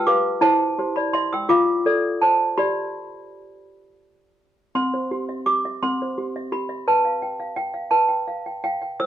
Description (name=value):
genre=classical, lullaby for toy piano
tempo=56 BPM (dotted quarters)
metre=6/8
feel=straight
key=C major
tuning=A4 = 439 Hz
part: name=toy piano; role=solo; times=0.0-9.1 s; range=C4 to E6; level=-19 LUFS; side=equal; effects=none
room=light reverb, studio ambience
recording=home recording on cassette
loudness=-19 LUFS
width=side -11 dB against mid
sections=0.0-4.8 A section; 4.8-9.1 B section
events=none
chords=0.4 C/E; 1.5 Dm/F; 2.6 G; 4.8 C; 6.9 G7/B